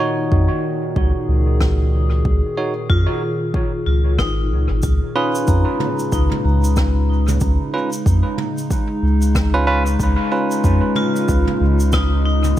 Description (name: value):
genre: ambient dub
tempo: 93 BPM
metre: 4/4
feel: swing 60% on 16ths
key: Db mixolydian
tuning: A4 = 441 Hz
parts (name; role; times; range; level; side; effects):
- warbly tape-like pad; sustained chords; 0.0-12.6 s; Bb2 to Ab4; -23 LUFS; left 1 dB; chorus, built-in reverb
- vibraphone with hard mallets; arpeggios; 0.0-12.6 s; Eb4 to Bb5; -27 LUFS; left 4 dB; tape echo
- bell-like tine electric piano; stabs; 0.0-12.6 s; Db4 to Db5; -23 LUFS; right 3 dB; dub echo
- soft dub sub bass; bass; 0.3-12.6 s; Ab1 to F2; -16 LUFS; equal; tube saturation
- electronic kick drum; drums; 0.3-12.1 s; none; -21 LUFS; equal; overdrive
- jazz brush drum kit; drums; 1.6-12.6 s; cabasa, rim click, toms; -28 LUFS; right 1 dB; dub echo
room: light reverb, studio ambience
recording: none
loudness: -15 LUFS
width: side -13 dB against mid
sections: 0.0-4.8 A section; 4.8-12.6 B section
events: filter sweep on vibraphone 0.0-4.8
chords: 0.0 Ebm7/Db; 4.8 Db7